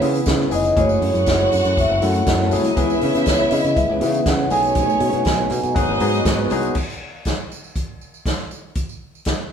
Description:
disco; 120 BPM; 4/4; straight; C# minor; A4 = 440 Hz
vibraphone with soft mallets; melody; 0.0-6.0 s; B4 to G#5; -21 LUFS; right 1 dB
warm studio violin section; second line; 0.0-6.5 s; A3 to F#5; -26 LUFS; equal
barky tine electric piano; accompaniment; 0.0-6.8 s; E3 to A4; -24 LUFS; left 5 dB
mellow electric guitar; accompaniment; 0.0-6.7 s; A3 to C#5; -28 LUFS; right 1 dB
percussive tonewheel organ; sustained chords; 0.0-6.7 s; C#3 to B4; -28 LUFS; equal; overdrive, slow rotary speaker
modern bright fingered electric bass; bass; 0.0-6.7 s; E#1 to C#3; -23 LUFS; right 1 dB
vintage drum kit; drums; 0.0-9.4 s; crash cymbal, hi-hat, kick drum, snare drum; -23 LUFS; equal
tambourine; percussion; 0.0-9.4 s; -37 LUFS; right 6 dB
wet stone room reverb, RT60 1.2 s; band playing live in one room; -17 LUFS; side -8 dB against mid
0.0-6.8 A section; 6.8-9.5 B section
0.0 C#m7; 0.8 F#m7; 2.8 C#m7; 4.5 B13; 5.8 G#m7; 6.8 N.C.
0.27 | 0.77 1.27 1.77 2.27 | 2.76 3.26 3.76 4.26 | 4.76 5.26 5.76 6.26 | 6.76 7.26 7.76 8.26 | 8.77 9.27

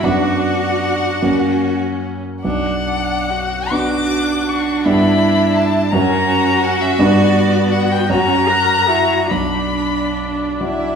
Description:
classical, slow romantic movement for piano quartet; 46-57 BPM (dotted quarters); 6/8; rubato; B minor; A4 = 442 Hz
warm violin; melody; 0.0-10.6 s; D5 to D6; -20 LUFS; left 5 dB
rich cello; second line; 0.0-11.0 s; D4 to A#4; -20 LUFS; right 2 dB
rich viola; accompaniment; 0.0-11.0 s; B3 to F#4; -22 LUFS; equal
warm concert grand piano; accompaniment; 0.0-11.0 s; B1 to D5; -18 LUFS; right 1 dB
wet stone room reverb, RT60 1.3 s; heard from further back in the room; -14 LUFS; side -6 dB against mid
0.0-11.0 A section
0.0 Bm/F#; 1.2 F#; 2.4 Bm; 4.9 Em/G; 5.9 F#; 7.0 G; 8.1 F#; 9.3 Bm
| 0.04 1.22 | 2.44 3.71 | 4.85 5.92 | 6.99 8.09 | 9.30 10.61

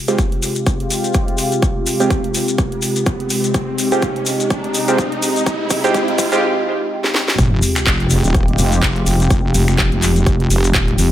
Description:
bass house; 125 BPM; 4/4; swing 57% on 16ths; F minor; A4 = 440 Hz
sweeping resonant pad; sustained chords; 0.0-11.1 s; C3 to G4; -20 LUFS; equal; chorus, sidechain pumping
riser and sub drop; sound effects; 1.6-9.3 s; -25 LUFS; right 1 dB
band-passed chord stab; stabs; 0.1-6.4 s; Ab3 to G4; -19 LUFS; right 2 dB; chorus, phaser, sidechain pumping, tape echo
house drum kit; drums; 0.1-11.1 s; finger snaps, handclaps, hi-hat, snare drum; -21 LUFS; right 1 dB; small room ambience
shekere; percussion; 0.1-11.1 s; -25 LUFS; left 5 dB
electronic kick drum; drums; 0.2-10.9 s; -19 LUFS; equal; small room ambience
wobble bass; bass; 7.4-11.1 s; Eb1 to F1; -16 LUFS; equal; chorus, tube saturation, sidechain pumping
light reverb; high-pass filter; -14 LUFS; side -12 dB against mid
0.0-7.4 A section; 7.4-11.1 B section
build-up 0.0-7.4; filter sweep on synth stab 0.0-7.4; riser 1.6-6.4; drum fill 3.5-6.4, 7.0-7.4; drop 7.4-11.1; impact 7.4-9.3
0.0 Fmadd9
0.18 0.67 1.15 | 1.62 2.10 2.58 3.06 | 3.54 4.03 4.50 4.99 | 5.46 5.95 6.42 6.91 | 7.38 7.87 8.35 8.82 | 9.30 9.79 10.27 10.74

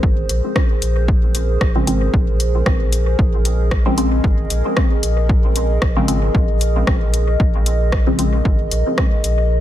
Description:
dub techno; 114 BPM; 4/4; swing 55% on 16ths; Bb minor; A4 = 440 Hz
dark analog pad; sustained chords; 0.0-9.6 s; Ab4 to Eb5; -24 LUFS; right 1 dB; chorus, phaser, sidechain pumping
filtered dub chord stab; stabs; 0.0-9.6 s; Db3 to C4; -23 LUFS; left 1 dB; chorus, phaser, sidechain pumping, dub echo
warm sub bass; bass; 0.0-9.6 s; Ab1 to Bb1; -19 LUFS; equal; sidechain pumping
electronic kick drum; drums; 0.0-9.1 s; -17 LUFS; equal; overdrive
punchy analog drum machine; drums; 0.3-9.4 s; hi-hat, rim click; -24 LUFS; left 1 dB; overdrive, dub echo
little or no reverb; dense, heavily limited modern master, vinyl crackle; -14 LUFS; side -12 dB against mid
0.0-9.6 A section
filter sweep on synth stab 0.0-9.6
0.0 Bbm9
0.03 0.56 | 1.08 1.61 2.14 2.66 | 3.19 3.71 4.24 4.77 | 5.29 5.82 6.35 6.87 | 7.40 7.92 8.45 8.98 | 9.50

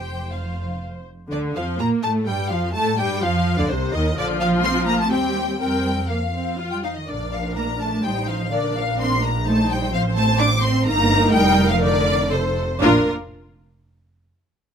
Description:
quick classical-period movement for string orchestra; 125 BPM; 3/4; rubato; Bb major; A4 = 439 Hz
rich studio violin section; melody; 0.0-13.1 s; Bb4 to D6; -24 LUFS; left 2 dB
rich studio violin section; second line; 0.0-13.1 s; F4 to D6; -28 LUFS; left 4 dB
rich studio viola section; accompaniment; 0.0-13.1 s; C3 to C5; -24 LUFS; right 1 dB
rich studio double bass section; bass; 0.0-13.1 s; F1 to Bb2; -25 LUFS; right 2 dB
warm studio cello section; bass; 0.0-13.1 s; F2 to D4; -24 LUFS; right 1 dB
light reverb; close, detailed microphones; -18 LUFS; side -7 dB against mid
0.0-1.3 A section; 1.3-12.8 B section; 12.8-14.3 C section
0.0 F5; 1.3 Bb/D; 2.7 F7; 4.2 Bb; 5.1 Cm/Eb; 5.6 Fsus4; 6.6 Ebadd9/F; 7.1 Bb; 8.0 F7/A; 8.5 Bb; 9.5 Cm7/Bb; 9.9 F/A; 10.9 Eb/G; 11.3 F7sus4; 12.3 F7; 12.8 Bb
0.31 0.82 | 1.32 1.80 2.27 | 2.75 3.23 3.69 | 4.17 4.63 5.11 | 5.60 6.10 6.59 | 7.09 7.57 8.05 | 8.53 9.00 9.46 | 9.93 10.40 10.87 | 11.34 11.82 12.31 | 12.82

